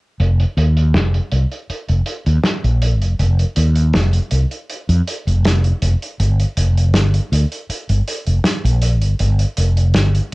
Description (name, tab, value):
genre	vaporwave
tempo	80 BPM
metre	4/4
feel	straight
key	unclear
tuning	A4 = 442 Hz
part	mellow fretless electric bass	bass	0.2-10.2 s	F1 to F2	-14 LUFS	equal	none
part	loose indie drum kit	drums	0.2-10.3 s	hi-hat, snare drum	-22 LUFS	equal	low-pass filter on hats, vintage 12-bit sampler grit, low-pass filter on snare, low-pass filter on room
room	little or no reverb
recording	home recording on cassette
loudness	-14 LUFS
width	side -23 dB against mid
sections	0.2-10.3 A section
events	none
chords	none